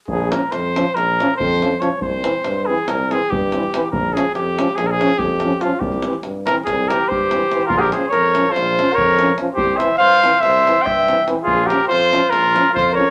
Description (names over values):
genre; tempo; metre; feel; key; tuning
balkan folk, Balkan brass band; 286 BPM (eighths); 9/8; straight; unclear; A4 = 440 Hz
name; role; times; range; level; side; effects
warm trumpet; melody; 0.1-13.1 s; F4 to G5; -20 LUFS; equal; none
warm tuba; bass; 0.1-13.1 s; Bb1 to G2; -27 LUFS; equal; none
davul; percussion; 0.1-13.1 s; none; -30 LUFS; equal; none
clear French horn; accompaniment; 0.3-13.1 s; C4 to Db4; -28 LUFS; equal; none
warm euphonium; accompaniment; 0.3-13.0 s; E3 to F3; -28 LUFS; equal; none
warm flugelhorn; second line; 6.9-13.1 s; F4 to E5; -20 LUFS; equal; none
room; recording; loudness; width
wet club reverb, RT60 0.7 s; none; -17 LUFS; mono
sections
0.1-13.1 A section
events
none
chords
0.1 Bbm; 2.0 C; 3.9 Bbm; 5.8 C; 7.7 Bbm; 9.6 C; 11.5 Bbm